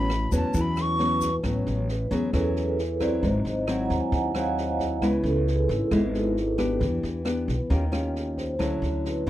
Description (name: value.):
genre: bossa nova.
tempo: 134 BPM.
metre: 4/4.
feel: straight.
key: A major.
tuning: A4 = 440 Hz.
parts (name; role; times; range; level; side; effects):
silver concert flute; melody; 0.0-1.3 s; A5 to C#6; -27 LUFS; equal; none.
nylon-string guitar; accompaniment; 0.0-9.3 s; G#2 to G4; -27 LUFS; left 1 dB; none.
vibraphone with soft mallets; accompaniment; 0.0-9.3 s; E4 to Bb5; -30 LUFS; right 2 dB; none.
upright bass; bass; 0.0-9.3 s; G#1 to E2; -28 LUFS; equal; none.
open jazz drum kit; drums; 0.1-9.3 s; kick drum, rim click, snare drum; -35 LUFS; right 1 dB; none.
tube shaker; percussion; 0.3-1.4 s; none; -42 LUFS; left 23 dB; none.
room: little or no reverb.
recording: dry, close 1970s-style studio recording.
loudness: -23 LUFS.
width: side -13 dB against mid.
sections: 0.0-1.4 A section; 1.4-9.3 A section.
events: flute solo 0.0-1.4; vibraphone solo 1.4-9.3.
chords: 0.0 A69; 3.2 G#7b13; 5.0 C#m7; 6.8 Em7; 7.7 D#9; 8.6 Dmaj9.